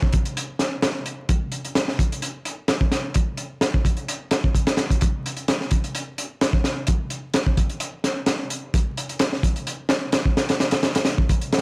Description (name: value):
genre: breakbeat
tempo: 129 BPM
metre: 4/4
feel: swing 53% on 16ths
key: none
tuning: none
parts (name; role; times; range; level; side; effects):
- crunchy breakbeat drum kit; drums; 0.0-11.6 s; hi-hat, kick drum, snare drum; -23 LUFS; equal; none
room: little or no reverb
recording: vinyl crackle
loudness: -23 LUFS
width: mono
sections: 0.0-11.6 A section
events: none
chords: none